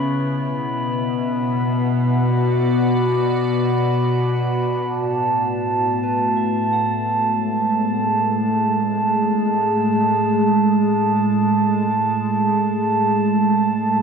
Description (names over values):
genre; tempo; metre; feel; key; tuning
ambient; free time; none; none; unclear; A4 = 440 Hz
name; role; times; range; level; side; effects
evolving wavetable pad; sustained chords; 0.0-14.0 s; A2 to D5; -18 LUFS; equal; chorus, built-in reverb
glass harmonica; texture; 0.0-14.0 s; A5 to B5; -22 LUFS; right 3 dB; shimmer reverb
soft synth bell; arpeggios; 6.0-14.0 s; B4 to F#5; -40 LUFS; right 1 dB; none
room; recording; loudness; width
wet concert hall reverb, RT60 1.9 s, small room reverb; none; -17 LUFS; side -6 dB against mid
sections
0.0-4.8 A section; 4.8-14.0 B section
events
none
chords
0.0 Bm; 4.8 A5